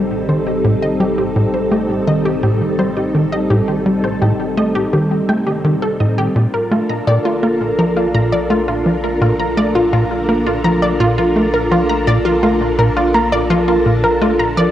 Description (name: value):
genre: ambient, sequencer-driven space music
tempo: 84 BPM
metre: 4/4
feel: straight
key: unclear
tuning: A4 = 440 Hz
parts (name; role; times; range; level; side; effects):
- string machine, full ensemble; sustained chords; 0.0-14.7 s; G3 to Bb4; -18 LUFS; equal; ensemble chorus, cassette tape
- wide unison pluck; arpeggios; 0.0-14.7 s; F4 to Bb5; -19 LUFS; equal; auto-pan, cassette tape, tape echo
- tight sequencer bass; riff; 0.0-14.7 s; A2 to Bb3; -17 LUFS; equal; vintage 12-bit sampler grit, cassette tape, tape echo
- analog drone; bass; 0.0-14.7 s; A1 to Bb1; -29 LUFS; equal; chorus
room: wet spring reverb, RT60 1.5 s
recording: home recording on cassette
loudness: -13 LUFS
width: side -12 dB against mid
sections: 0.0-14.7 A section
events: fade-in on synth arpeggio sound 0.0-14.7; fade-in on synth drone 0.0-14.7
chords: 0.0 Am7b5; 6.4 Bbmaj7